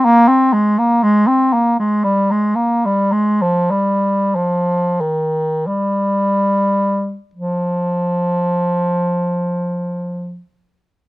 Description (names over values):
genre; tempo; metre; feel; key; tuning
classical, free, expressive piece for unaccompanied bass clarinet; 29-62 BPM; 4/4; rubato; F minor; A4 = 444 Hz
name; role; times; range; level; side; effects
clear bass clarinet; solo; 0.0-10.4 s; Eb3 to C4; -14 LUFS; equal; none
room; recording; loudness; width
little or no reverb; close, detailed microphones; -14 LUFS; side -19 dB against mid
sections
0.0-7.3 A section; 7.3-11.1 B section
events
slowing down 0.0-7.3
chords
none